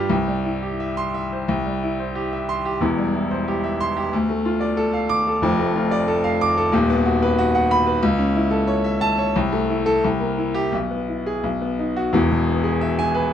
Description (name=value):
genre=classical, virtuoso piano study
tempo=84-93 BPM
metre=2/4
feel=rubato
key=C major, E major from 6.7 s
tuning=A4 = 441 Hz
part: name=clear grand piano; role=solo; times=0.0-13.3 s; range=D#1 to D6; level=-18 LUFS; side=left 1 dB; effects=none
room=light reverb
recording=close, detailed microphones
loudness=-18 LUFS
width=side -9 dB against mid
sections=0.0-1.5 A section; 1.5-12.2 B section; 12.2-13.3 C section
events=none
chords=0.1 C; 2.8 C/E; 4.1 Dm; 5.4 Dm/F; 6.7 B/D#; 8.0 A/C#; 9.4 Am/C; 10.0 C7; 10.7 E/B; 11.4 B; 12.2 E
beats=| 0.10 0.80 | 1.49 2.16 | 2.82 3.47 | 4.13 4.78 | 5.44 6.09 | 6.73 7.38 | 8.03 8.68 | 9.36 10.04 | 10.73 11.44 | 12.15 12.83